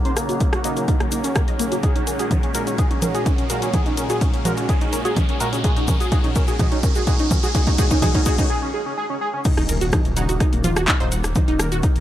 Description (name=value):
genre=melodic techno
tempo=126 BPM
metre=4/4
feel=straight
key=Eb minor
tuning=A4 = 440 Hz
part: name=lush unison pad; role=sustained chords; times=0.0-8.5 s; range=Bb2 to Db4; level=-30 LUFS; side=right 1 dB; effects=chorus, sidechain pumping
part: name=overtone-sweeping drone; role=drone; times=0.0-12.0 s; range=Eb3 to Bb3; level=-38 LUFS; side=equal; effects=none
part: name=riser and impact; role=sound effects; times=0.2-11.4 s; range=none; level=-31 LUFS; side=equal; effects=none
part: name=granular cloud pad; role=texture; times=0.0-8.5 s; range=Eb4 to Bb5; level=-33 LUFS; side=left 1 dB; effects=built-in reverb, sidechain pumping
part: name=wide unison lead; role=melody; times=0.1-9.4 s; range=Bb3 to C5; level=-27 LUFS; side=equal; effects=sidechain pumping, tape echo
part: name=wide unison pluck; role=arpeggios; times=0.1-11.9 s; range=Bb3 to Gb5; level=-27 LUFS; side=right 1 dB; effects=sidechain pumping, analog delay
part: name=house drum kit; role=drums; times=0.1-12.0 s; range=congas, crash cymbal, handclaps, hi-hat, rim click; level=-25 LUFS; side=equal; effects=overdrive, sidechain pumping on hats, sidechain pumping on perc, sidechain pumping on cymbals
part: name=tube shaker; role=percussion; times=0.2-11.9 s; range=none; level=-33 LUFS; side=left 2 dB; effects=none
part: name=electronic kick drum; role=drums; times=0.4-11.9 s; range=none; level=-19 LUFS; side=equal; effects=none
part: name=synth brass stab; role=stabs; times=0.6-11.1 s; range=Bb2 to Gb4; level=-31 LUFS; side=right 2 dB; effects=chorus, phaser, sidechain pumping, analog delay
part: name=dark detuned saw bass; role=bass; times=9.6-12.0 s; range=Eb1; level=-23 LUFS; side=equal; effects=sidechain pumping
room=little or no reverb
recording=dry, gritty hardware recording, transformer saturation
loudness=-17 LUFS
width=side -12 dB against mid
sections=0.0-9.5 A section; 9.5-12.0 B section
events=build-up 0.0-9.5; filter sweep on synth pluck 0.0-9.5; filter sweep on synth stab 0.0-9.5; riser 0.2-8.5; drum fill 1.8-8.5; break 8.5-9.5; drop 9.5-12.0; impact 9.5-11.4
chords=0.0 Ebm7; 1.8 Gbadd9; 9.5 Ebm7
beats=0.41 0.88 1.36 | 1.83 2.31 2.79 3.26 | 3.74 4.21 4.69 5.17 | 5.64 6.12 6.59 7.07 | 7.55 8.02 8.50 8.98 | 9.45 9.93 10.40 10.88 | 11.36 11.83